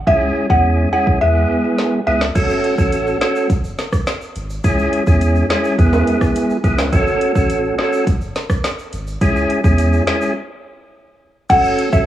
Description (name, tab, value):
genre	dancehall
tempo	105 BPM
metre	4/4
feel	straight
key	F# minor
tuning	A4 = 438 Hz
part	warm sub bass	bass	0.0-12.1 s	F#1 to E2	-19 LUFS	equal	none
part	mallet-like synth pluck	melody	0.1-2.2, 11.5-12.0 s	E5 to F#5	-17 LUFS	equal	chorus, phaser, cassette tape, tape echo
part	percussive tonewheel organ	accompaniment	0.1-12.1 s	G#3 to A4	-17 LUFS	equal	overdrive, chorus vibrato, fast rotary speaker, cassette tape
part	afro-pop drum kit	drums	0.1-12.1 s	crash cymbal, hi-hat, kick drum, rim click, snare drum	-18 LUFS	equal	cassette tape
part	tube shaker and timbales	percussion	2.4-12.1 s	none	-28 LUFS	right 4 dB	none
room	light reverb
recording	home recording on cassette, small room ambience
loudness	-14 LUFS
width	side -12 dB against mid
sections	0.0-2.4 A section; 2.4-11.5 B section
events	kick muted 1.2-2.4; break 10.4-11.5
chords	0.1 C#m; 1.2 E; 2.4 F#m; 4.6 C#m; 5.8 E; 6.9 F#m; 9.2 C#m; 10.4 N.C.; 11.5 F#m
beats	| 0.07 0.64 1.21 1.78 | 2.36 2.93 3.50 4.07 | 4.64 5.21 5.79 6.36 | 6.93 7.50 8.07 8.64 | 9.21 9.79 10.36 10.93 | 11.50